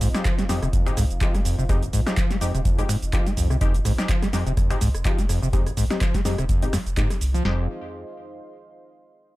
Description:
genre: acid house.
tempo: 125 BPM.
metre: 4/4.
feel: swing 55% on 16ths.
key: F minor.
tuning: A4 = 440 Hz.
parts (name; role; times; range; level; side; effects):
dark analog pad; sustained chords; 0.0-7.7 s; F4 to C6; -40 LUFS; right 1 dB; chorus, sidechain pumping.
overdriven acid bass; riff; 0.0-7.7 s; F1 to Ab3; -26 LUFS; equal; distortion, wide subtle chorus, sidechain pumping, digital delay.
warm sub bass; bass; 0.0-7.7 s; Eb1 to C2; -25 LUFS; equal; sidechain pumping.
punchy analog drum machine; drums; 0.0-7.4 s; finger snaps, handclaps, hi-hat, rim click, shaker, snare drum; -29 LUFS; right 1 dB; overdrive.
band-passed chord stab; stabs; 0.1-7.6 s; Ab3 to G4; -32 LUFS; left 4 dB; chorus, digital delay.
booming analog drum machine; drums; 0.3-7.6 s; kick drum, snare drum; -24 LUFS; equal; none.
room: digital ambience.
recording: none.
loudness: -20 LUFS.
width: side -18 dB against mid.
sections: 0.0-7.5 A section; 7.5-9.4 B section.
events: filter sweep on synth stab 0.0-7.5.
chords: 0.0 Fm7.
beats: 0.25 0.73 1.21 | 1.69 2.17 2.65 3.13 | 3.61 4.09 4.57 5.05 | 5.53 6.01 6.49 6.97 | 7.45.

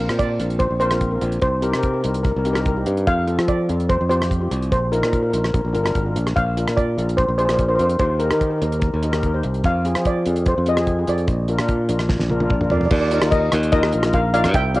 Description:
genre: calypso.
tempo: 146 BPM.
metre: 4/4.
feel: straight.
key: Eb major.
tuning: A4 = 438 Hz.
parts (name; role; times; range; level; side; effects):
steel pan; melody; 0.0-14.8 s; Bb4 to G5; -22 LUFS; equal; cassette tape, analog delay.
steel pan; accompaniment; 0.0-14.8 s; C4 to F5; -26 LUFS; left 2 dB; none.
modern bright fingered electric bass; bass; 0.0-14.8 s; G1 to F3; -21 LUFS; equal; none.
damped 70s drum kit; drums; 0.1-14.8 s; crash cymbal, hi-hat, kick drum, rim click, snare drum, toms; -23 LUFS; equal; cassette tape.
room: light reverb, small room ambience.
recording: home recording on cassette, nothing above 10.6 kHz.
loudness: -17 LUFS.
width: side -19 dB against mid.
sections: 0.0-12.9 A section; 12.9-14.8 B section.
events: drum fill 12.1-12.9; steel pan fill 12.3-12.9.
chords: 0.0 Bbsus2; 1.4 Cm; 3.1 F; 4.7 Bbsus4; 5.5 Bb; 8.0 Eb; 9.6 Fm; 11.3 Bb; 12.9 Ebsus2.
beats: 0.20 0.61 1.02 | 1.43 1.84 2.25 2.67 | 3.08 3.49 3.90 4.31 | 4.72 5.13 5.54 5.95 | 6.36 6.77 7.18 7.59 | 8.00 8.41 8.82 9.23 | 9.64 10.05 10.46 10.87 | 11.28 11.69 12.10 12.51 | 12.91 13.32 13.73 14.14 | 14.55.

